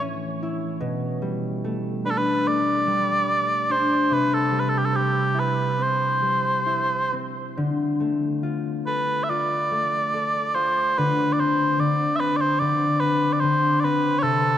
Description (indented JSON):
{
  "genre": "celtic folk, Celtic slow air",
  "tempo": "66-76 BPM",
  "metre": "4/4",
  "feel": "rubato",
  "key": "unclear",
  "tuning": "A4 = 440 Hz",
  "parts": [
    { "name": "concert harp", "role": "accompaniment", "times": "0.0-14.6 s", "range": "A2 to A4", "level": "-24 LUFS", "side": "left 2 dB", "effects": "none" },
    { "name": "mellow small bagpipes", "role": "melody", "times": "2.1-14.6 s", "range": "G4 to E5", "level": "-22 LUFS", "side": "right 1 dB", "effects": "none" }
  ],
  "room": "wet cathedral reverb, RT60 4.0 s",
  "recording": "none",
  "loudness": "-20 LUFS",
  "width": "side -10 dB against mid",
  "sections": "0.0-14.6 A section",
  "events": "none",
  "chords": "0.0 A; 0.8 Gadd9/B; 4.1 C; 7.6 Dm; 11.0 Csus2/D"
}